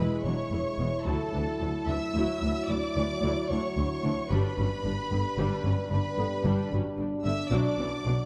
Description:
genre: cinematic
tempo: 74 BPM (dotted quarters)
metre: 12/8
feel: straight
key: unclear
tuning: A4 = 439 Hz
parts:
  - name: warm symphonic violin section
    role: melody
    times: 0.0-8.3 s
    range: A5 to E6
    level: -40 LUFS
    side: equal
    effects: none
  - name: warm symphonic violin section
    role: second line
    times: 0.0-8.3 s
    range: A4 to E5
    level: -38 LUFS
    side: equal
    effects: none
  - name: dark symphonic viola section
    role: accompaniment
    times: 0.0-8.1 s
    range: D3 to E4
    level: -37 LUFS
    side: equal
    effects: none
  - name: mellow French horn section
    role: sustained chords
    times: 0.0-8.3 s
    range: F#3 to E4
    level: -37 LUFS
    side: equal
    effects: none
  - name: rich symphonic cello section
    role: bass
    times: 0.0-8.1 s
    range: D2 to B2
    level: -35 LUFS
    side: equal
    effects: none
  - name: warm symphonic double bass section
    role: bass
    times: 0.0-8.1 s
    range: E1 to D2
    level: -34 LUFS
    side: equal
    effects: none
room: moderate scoring stage reverb, RT60 2.1 s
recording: dark, warm production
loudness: -29 LUFS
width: mono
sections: 0.0-8.3 A section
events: none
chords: 0.0 E; 1.1 Dadd9; 4.3 G; 7.5 Bm

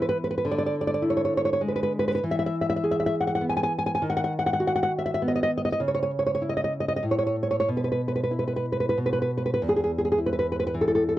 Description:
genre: romantic piece for solo classical guitar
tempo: 91-108 BPM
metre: 3/4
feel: rubato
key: unclear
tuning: A4 = 440 Hz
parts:
  - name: nylon-string guitar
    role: solo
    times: 0.0-11.2 s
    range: E2 to G#5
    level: -23 LUFS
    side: equal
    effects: none
room: little or no reverb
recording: dry, close 1970s-style studio recording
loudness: -23 LUFS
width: side -14 dB against mid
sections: 0.0-9.6 A section; 9.6-11.2 B section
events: none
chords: 0.5 E7/D; 2.2 E; 4.0 B/D#; 5.8 C#m; 7.0 N.C.; 7.7 Bsus4; 9.0 N.C.

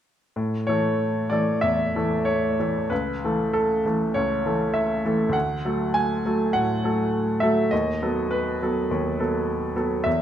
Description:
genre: classical, romantic character piece for solo piano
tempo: 92-106 BPM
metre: 4/4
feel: rubato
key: A major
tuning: A4 = 440 Hz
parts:
  - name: bright baby grand piano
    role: solo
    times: 0.4-10.2 s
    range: C#2 to G#5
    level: -21 LUFS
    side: equal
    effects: none
room: moderate large studio reverb, RT60 1.2 s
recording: none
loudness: -21 LUFS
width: side -10 dB against mid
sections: 0.4-10.2 A section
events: none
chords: 0.4 A; 2.9 A/C#; 5.3 D; 7.7 B7/D#

